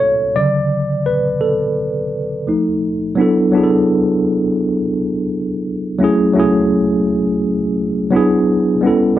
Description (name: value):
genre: hip hop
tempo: 85 BPM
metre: 4/4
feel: swing 57% on 16ths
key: unclear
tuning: A4 = 442 Hz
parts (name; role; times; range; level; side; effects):
- tine electric piano; solo; 0.0-9.2 s; C#3 to D5; -14 LUFS; equal; medium stereo tremolo, low-pass filter
room: wet studio ambience, RT60 0.5 s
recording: cassette tape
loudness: -14 LUFS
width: side -13 dB against mid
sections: 0.0-3.2 A section; 3.2-9.2 B section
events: tine electric piano solo 0.0-3.2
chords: 0.3 Dmaj7; 2.5 F7; 3.2 E9sus4; 6.0 F#m7; 8.1 E7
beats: | 0.35 1.05 1.76 2.47 | 3.17 3.88 4.58 5.29 | 6.00 6.70 7.41 8.11 | 8.82